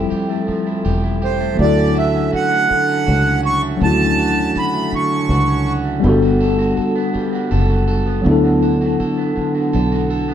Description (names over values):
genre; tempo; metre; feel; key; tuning
R&B; 54 BPM (dotted quarters); 6/8; straight; D major; A4 = 441 Hz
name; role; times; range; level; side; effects
electric guitar at the edge of break-up; second line; 0.0-10.3 s; D3 to A4; -22 LUFS; right 4 dB; spring reverb
mellow tine electric piano; accompaniment; 0.0-10.3 s; F3 to A4; -19 LUFS; left 3 dB; medium stereo tremolo
fingered electric bass; bass; 0.0-10.3 s; E1 to D2; -18 LUFS; equal; none
accordion; melody; 1.2-5.7 s; C5 to C#6; -18 LUFS; right 3 dB; none
room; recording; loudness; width
moderate stone room reverb, RT60 1.1 s; band playing live in one room; -14 LUFS; side -10 dB against mid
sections
0.0-10.3 A section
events
none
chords
0.0 Fmaj9; 1.6 Dmaj7; 6.0 Gmaj9; 8.3 D6